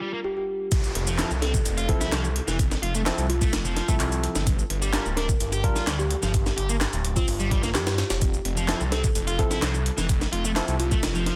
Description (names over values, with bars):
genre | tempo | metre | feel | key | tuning
breakbeat, breaks | 128 BPM | 4/4 | straight | unclear | A4 = 436 Hz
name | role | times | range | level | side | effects
overdriven electric guitar | riff | 0.0-11.4 s | E3 to G4 | -34 LUFS | equal | tube saturation, vintage 12-bit sampler grit, low-pass filter, tape echo
barky tine electric piano | stabs | 0.0-5.8, 8.7-10.8 s | F3 to Bb4 | -36 LUFS | equal | tape echo
kalimba | melody | 0.2-11.4 s | F4 to Bb4 | -35 LUFS | equal | old record sound, tape echo
breakbeat sampler-style drum kit | drums | 0.7-11.4 s | hi-hat, kick drum, snare drum | -28 LUFS | equal | small room ambience
electronic shaker and handclaps | drums | 0.7-11.2 s | none | -35 LUFS | equal | overdrive, small room ambience
downlifter | sound effects | 0.7-4.5 s | none | -41 LUFS | equal | none
phased detuned saw bass | bass | 0.9-11.3 s | D1 to G2 | -30 LUFS | equal | phaser
room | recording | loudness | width
light reverb, digital ambience | dense, heavily limited modern master | -25 LUFS | mono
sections
0.7-11.4 A section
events
drop 0.7-11.4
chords
0.0 Gm7; 0.7 Fmaj7; 4.5 G7(no3); 8.2 Fmaj7